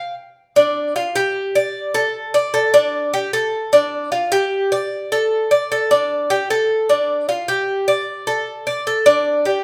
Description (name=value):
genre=latin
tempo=152 BPM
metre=4/4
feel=straight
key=unclear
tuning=A4 = 439 Hz
part: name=Cuban tres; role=solo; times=0.0-9.6 s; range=D4 to F5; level=-18 LUFS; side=equal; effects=none
room=moderate large studio reverb, RT60 1.1 s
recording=band playing live in one room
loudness=-18 LUFS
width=mono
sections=0.6-9.6 A section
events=none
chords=none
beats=0.17 | 0.57 0.96 1.36 1.75 | 2.15 2.54 2.94 3.33 | 3.73 4.12 4.52 4.91 | 5.31 5.70 6.10 6.49 | 6.89 7.28 7.68 8.07 | 8.47 8.86 9.26